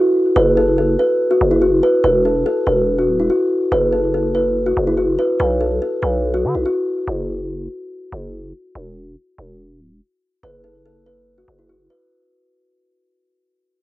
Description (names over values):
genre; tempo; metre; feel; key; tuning
hip hop; 143 BPM; 4/4; half-time; unclear; A4 = 440 Hz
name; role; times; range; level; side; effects
kalimba; melody; 0.0-7.1, 10.4-12.1 s; E4 to B4; -16 LUFS; equal; low-pass filter, cassette tape
growling 808-style bass; bass; 0.4-11.9 s; D1 to D3; -20 LUFS; equal; none
room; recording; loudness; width
light reverb; home recording on cassette; -15 LUFS; side -16 dB against mid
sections
0.0-12.1 A section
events
fade-out 0.0-12.1; break 7.1-10.4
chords
0.4 F#sus4; 2.0 Esus2; 3.7 F#sus4; 5.4 B5; 7.1 N.C.; 10.4 F#sus4